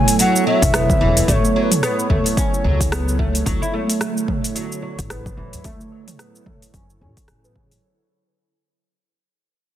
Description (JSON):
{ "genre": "organic downtempo", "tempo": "110 BPM", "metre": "4/4", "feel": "swing 58% on 16ths", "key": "unclear", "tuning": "A4 = 441 Hz", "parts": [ { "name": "bansuri", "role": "melody", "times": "0.0-2.6 s", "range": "B4 to G#5", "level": "-22 LUFS", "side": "left 2 dB", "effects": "tape echo" }, { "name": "airy breathy pad", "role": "sustained chords", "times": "0.0-7.8 s", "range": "D3 to C#5", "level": "-24 LUFS", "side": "right 2 dB", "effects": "chorus, sidechain pumping" }, { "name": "oud", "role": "arpeggios", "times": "0.0-7.7 s", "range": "C#3 to E4", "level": "-23 LUFS", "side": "right 2 dB", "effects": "low-pass filter, tape echo" }, { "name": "deep house drum kit", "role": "drums", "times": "0.1-7.8 s", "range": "cabasa, hi-hat, rim click, toms", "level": "-22 LUFS", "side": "equal", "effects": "overdrive" }, { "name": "upright bass", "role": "bass", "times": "0.6-7.8 s", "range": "E1 to F#2", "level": "-21 LUFS", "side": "equal", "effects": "none" }, { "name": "electronic kick drum", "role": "drums", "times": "0.6-7.7 s", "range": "none", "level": "-22 LUFS", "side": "equal", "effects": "overdrive" }, { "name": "udu", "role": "percussion", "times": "1.2-7.1 s", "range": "none", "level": "-24 LUFS", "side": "left 1 dB", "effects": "none" } ], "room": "light reverb, small room ambience", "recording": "dense, heavily limited modern master", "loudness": "-16 LUFS", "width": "side -11 dB against mid", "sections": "0.0-7.8 A section", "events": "fade-out 0.0-7.8; filter sweep on oud 0.0-7.8", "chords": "0.0 A69; 3.5 Dmaj9", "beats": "0.19 0.73 | 1.28 1.82 2.37 2.92 | 3.46 4.01 4.55 5.10 | 5.64 6.19 6.73 7.28" }